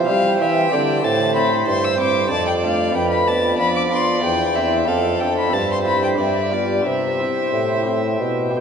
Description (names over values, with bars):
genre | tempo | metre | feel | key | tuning
classical, baroque-style sonata movement with continuo | 93 BPM | 3/4 | uneven beats | C major | A4 = 440 Hz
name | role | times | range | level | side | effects
rich violin | melody | 0.0-8.6 s | C5 to E6 | -21 LUFS | left 3 dB | none
rich violin | second line | 0.0-8.5 s | A4 to E5 | -24 LUFS | right 4 dB | none
chamber organ, sparkling flutes | accompaniment | 0.0-8.6 s | E2 to D5 | -23 LUFS | equal | none
warm bassoon | bass | 0.0-8.6 s | E2 to G3 | -22 LUFS | right 1 dB | none
room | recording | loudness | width
wet cathedral reverb, RT60 3.9 s | nothing above 10.5 kHz | -16 LUFS | side -7 dB against mid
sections
0.0-8.6 A section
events
none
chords
0.0 C; 1.0 Am; 2.3 Dm/F; 2.9 G9/F (rootless); 4.2 C/E; 4.9 Dm7/F; 5.5 C/G; 6.2 G7; 6.8 C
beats
0.40 | 1.04 1.67 2.31 | 2.94 3.59 4.23 | 4.87 5.52 6.18 | 6.85 7.53 8.20